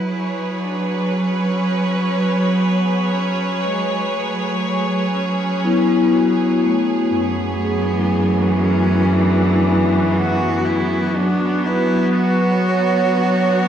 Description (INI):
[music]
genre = ambient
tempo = 60 BPM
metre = 4/4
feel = straight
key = F# minor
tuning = A4 = 439 Hz
[part]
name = clear cello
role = melody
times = 0.0-13.7 s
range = G#3 to F#4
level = -26 LUFS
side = equal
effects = none
[part]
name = bright chamber string section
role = sustained chords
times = 0.0-13.7 s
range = F#2 to C#5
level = -17 LUFS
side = right 1 dB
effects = none
[part]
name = vibraphone with medium hard mallets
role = arpeggios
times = 5.6-13.7 s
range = A3 to C#5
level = -20 LUFS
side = left 1 dB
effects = diffuse ambient delay
[sound]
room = wet concert hall reverb, RT60 2.3 s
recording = dark, warm production, nothing above 10.3 kHz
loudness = -16 LUFS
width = side -9 dB against mid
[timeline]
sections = 0.0-13.7 A section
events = fade-in on cello 0.0-13.7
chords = 0.0 F#m11; 11.2 Bmadd9/F#